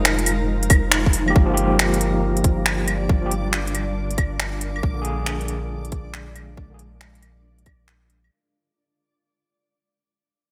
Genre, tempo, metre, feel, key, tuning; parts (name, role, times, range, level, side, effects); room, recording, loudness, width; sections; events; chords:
future garage; 138 BPM; 4/4; swing 66% on 16ths; G phrygian; A4 = 439 Hz
granular cloud pad; sustained chords; 0.0-8.3 s; G3 to F5; -31 LUFS; equal; built-in reverb, sidechain pumping
warm sub bass; bass; 0.0-8.3 s; F1 to Bb1; -28 LUFS; equal; sidechain pumping
backwards swelling texture; texture; 0.0-8.3 s; Bb4 to D5; -37 LUFS; equal; built-in reverb, subtle chorus
organic electronic drum kit; drums; 0.1-8.3 s; claves, finger snaps, hi-hat; -24 LUFS; equal; overdrive, gated reverb
electronic kick drum; drums; 0.7-7.8 s; -20 LUFS; equal; overdrive
overdriven tine electric piano; accompaniment; 1.3-6.8 s; D3 to Ab4; -28 LUFS; equal; medium tremolo, sidechain pumping, digital delay
moderate lush hall reverb, RT60 2.0 s; bright 1980s-style digital production; -21 LUFS; mono
0.0-1.4 A section; 1.4-8.3 B section
fade-out 1.4-8.3
0.0 Fm7; 1.4 Gm7; 4.8 Bb7